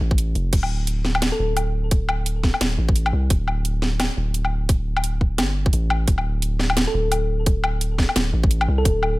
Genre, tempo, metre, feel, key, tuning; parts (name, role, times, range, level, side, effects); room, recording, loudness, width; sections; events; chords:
half-time drum and bass; 173 BPM; 4/4; swing 59% on 16ths, half-time; D minor; A4 = 440 Hz
long sustained 808-style bass; bass; 0.0-9.2 s; D1 to C2; -22 LUFS; equal
electronic kick drum; drums; 0.1-8.9 s; -18 LUFS; equal; overdrive
drum and bass drum kit; drums; 0.2-9.1 s; crash cymbal, hi-hat, snare drum, woodblock; -24 LUFS; left 1 dB; overdrive
thumb-piano-like synth pluck; melody; 1.3-1.6, 6.9-9.2 s; A4; -28 LUFS; equal; chorus, digital delay
digital ambience; -19 LUFS; side -20 dB against mid
0.0-9.2 A section
0.0 D5